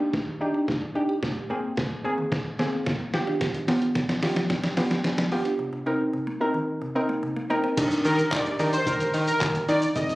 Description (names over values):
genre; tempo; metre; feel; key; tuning
dance-pop; 110 BPM; 4/4; straight; Eb major; A4 = 441 Hz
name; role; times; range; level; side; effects
soft round pluck; accompaniment; 0.0-10.2 s; Bb3 to C5; -26 LUFS; equal; chorus
mallet-like synth pluck; arpeggios; 0.0-7.7 s; G2 to G4; -34 LUFS; equal; chorus, sidechain pumping, digital delay
trip hop sampler-style drum kit; drums; 0.1-10.2 s; crash cymbal, handclaps, hi-hat, kick drum, shaker, snare drum; -28 LUFS; equal; none
fat analog bass; bass; 7.8-10.1 s; Ab1 to Eb3; -26 LUFS; equal; sidechain pumping
soft supersaw; melody; 8.1-10.2 s; Bb4 to Eb5; -25 LUFS; equal; sidechain pumping
room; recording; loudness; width
moderate plate reverb, RT60 1.7 s, digital ambience; recorded on a phone in the room, club reverb; -23 LUFS; side -18 dB against mid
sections
0.0-7.8 A section; 7.8-10.2 B section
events
build-up 0.0-7.8; drum fill 0.0-5.6; drop 7.8-10.2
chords
0.0 Ebmaj7; 1.2 Abadd9; 3.1 G7; 5.6 Cm7; 7.8 Ebmaj7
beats
0.14 0.68 | 1.23 1.77 2.32 2.87 | 3.41 3.96 4.50 5.05 | 5.59 6.14 6.68 7.23 | 7.78 8.32 8.87 9.41 | 9.96